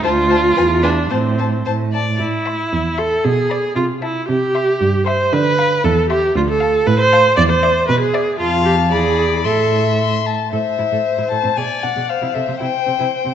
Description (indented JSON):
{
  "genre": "quick classical-period movement for string quartet",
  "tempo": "115 BPM",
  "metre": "2/4",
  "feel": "straight",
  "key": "A minor",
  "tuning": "A4 = 438 Hz",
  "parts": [
    { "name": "dark violin", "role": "melody", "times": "0.0-13.3 s", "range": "E5 to C6", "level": "-23 LUFS", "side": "left 10 dB", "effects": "none" },
    { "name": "rich violin", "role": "second line", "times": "0.0-13.3 s", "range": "B4 to F5", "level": "-25 LUFS", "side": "left 4 dB", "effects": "none" },
    { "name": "rich viola", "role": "accompaniment", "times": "0.0-13.3 s", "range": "C4 to D5", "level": "-16 LUFS", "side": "right 1 dB", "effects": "none" },
    { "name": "warm cello", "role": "bass", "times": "0.1-13.3 s", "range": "D2 to D3", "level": "-20 LUFS", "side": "right 3 dB", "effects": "none" }
  ],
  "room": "moderate scoring stage reverb, RT60 1.7 s",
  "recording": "nothing above 7.9 kHz",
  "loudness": "-14 LUFS",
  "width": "side -9 dB against mid",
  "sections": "0.0-2.2 A section; 2.2-10.5 B section; 10.5-13.3 B section",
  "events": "none",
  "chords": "0.0 Dm; 0.6 E; 1.1 Am; 3.2 G#dim/B; 3.8 Am/C; 4.3 C; 5.3 Bdim/D; 5.8 C/E; 6.4 Dm; 7.4 E5; 8.4 F; 8.9 E7; 9.4 Am; 11.6 G#dim; 12.1 Am/C (rootless); 12.6 C5"
}